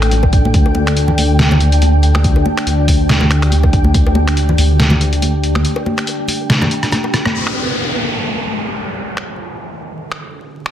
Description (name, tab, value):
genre	deep dubstep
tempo	141 BPM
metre	4/4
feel	swing 56% on 16ths, half-time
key	unclear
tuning	A4 = 440 Hz
part	deep dark ambient pad	sustained chords	0.0-10.7 s	D4 to A4	-22 LUFS	left 1 dB	chorus, built-in reverb
part	dark detuned saw bass	bass	0.0-5.6 s	A1 to D2	-13 LUFS	equal	none
part	trip hop sampler-style drum kit	drums	0.0-10.7 s	finger snaps, hi-hat, rim click, snare drum	-18 LUFS	equal	none
part	flickering grainy texture	texture	0.0-7.4 s	G5	-26 LUFS	right 1 dB	built-in reverb
part	congas and bongos	percussion	0.1-7.3 s	none	-21 LUFS	left 1 dB	dub echo
part	electronic kick drum	drums	0.2-4.0 s	none	-13 LUFS	equal	none
part	downlifter	sound effects	7.3-10.7 s	none	-20 LUFS	equal	none
room	light reverb, digital ambience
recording	dense, heavily limited modern master, vinyl crackle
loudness	-12 LUFS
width	side -10 dB against mid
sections	0.0-7.3 A section; 7.3-10.7 B section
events	drop 0.0-7.3; break 5.6-7.3; drum fill 6.5-7.3; band accent 7.2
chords	0.0 D5